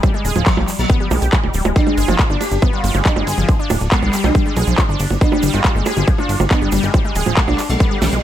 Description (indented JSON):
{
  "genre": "psychedelic trance",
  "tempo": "139 BPM",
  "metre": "4/4",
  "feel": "straight",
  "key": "unclear",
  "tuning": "A4 = 440 Hz",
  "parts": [
    { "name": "wide unison pluck", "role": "riff", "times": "0.0-8.2 s", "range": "F3 to Ab4", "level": "-22 LUFS", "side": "moving between left 3 dB and right 3 dB", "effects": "auto-pan, sidechain pumping, dub echo" },
    { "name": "big-room dance drum kit", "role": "drums", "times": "0.0-8.2 s", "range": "bongos, handclaps, hi-hat, ride cymbal, snare drum", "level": "-22 LUFS", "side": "right 2 dB", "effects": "studio ambience" },
    { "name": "electronic kick drum", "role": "drums", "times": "0.0-7.9 s", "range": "none", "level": "-16 LUFS", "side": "equal", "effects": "studio ambience" },
    { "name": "tube shaker", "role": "percussion", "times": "0.0-8.2 s", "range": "none", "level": "-33 LUFS", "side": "right 4 dB", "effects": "none" },
    { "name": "plucky analog bass", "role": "bass", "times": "0.2-8.2 s", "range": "D1 to B1", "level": "-19 LUFS", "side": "equal", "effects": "tube saturation" },
    { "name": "sitar", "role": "melody", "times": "0.5-8.2 s", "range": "F3 to G4", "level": "-23 LUFS", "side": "equal", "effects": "phaser, sidechain pumping, ping-pong delay" }
  ],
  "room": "little or no reverb",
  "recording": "none",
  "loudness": "-14 LUFS",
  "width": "side -11 dB against mid",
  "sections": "0.0-8.2 A section",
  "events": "drum fill 8.0",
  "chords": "0.0 G5",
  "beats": "| 0.03 0.47 0.90 1.33 | 1.76 2.19 2.62 3.06 | 3.49 3.92 4.35 4.78 | 5.21 5.64 6.08 6.51 | 6.94 7.37 7.80"
}